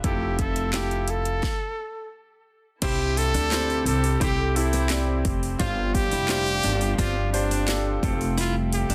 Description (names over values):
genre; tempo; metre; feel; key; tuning
piano-driven pop; 86 BPM; 4/4; straight; unclear; A4 = 440 Hz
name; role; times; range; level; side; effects
warm trumpet; melody; 0.0-8.9 s; D4 to A4; -30 LUFS; equal; none
bright concert grand piano; accompaniment; 0.0-8.9 s; G2 to D5; -32 LUFS; equal; none
warm studio string section; sustained chords; 0.0-8.9 s; C3 to E5; -39 LUFS; equal; none
upright bass; bass; 0.0-8.9 s; F1 to D2; -29 LUFS; equal; none
house drum kit; drums; 0.0-8.9 s; crash cymbal, handclaps, hi-hat, kick drum, snare drum; -31 LUFS; equal; none
fingerpicked steel-string acoustic guitar; riff; 2.8-8.9 s; A3 to F4; -36 LUFS; equal; none
room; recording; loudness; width
light reverb; dense, heavily limited modern master; -24 LUFS; mono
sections
0.0-2.8 A section; 2.8-8.9 B section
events
stop 1.4-2.8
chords
0.0 Fmaj7; 2.8 G7sus4